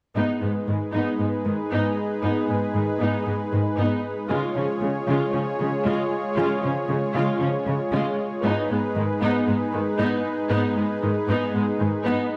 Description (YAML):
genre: cinematic, hybrid orchestral and electronic film score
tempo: 116 BPM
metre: 4/4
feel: straight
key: G# dorian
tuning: A4 = 440 Hz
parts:
  - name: warm symphonic viola section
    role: accompaniment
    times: 0.2-12.3 s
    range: C#3 to E#4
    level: -29 LUFS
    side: equal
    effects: none
  - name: warm analog pad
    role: sustained chords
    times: 0.2-12.4 s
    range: G#3 to C#5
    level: -28 LUFS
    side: equal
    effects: chorus
  - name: warm symphonic cello section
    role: bass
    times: 0.2-12.1 s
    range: G#2 to C#3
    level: -29 LUFS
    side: equal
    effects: none
room: moderate recital hall reverb, RT60 1.6 s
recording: none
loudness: -24 LUFS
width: mono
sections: 0.2-12.4 A section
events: build-up 0.2-12.4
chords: 0.2 G#m; 4.3 C#; 8.4 G#m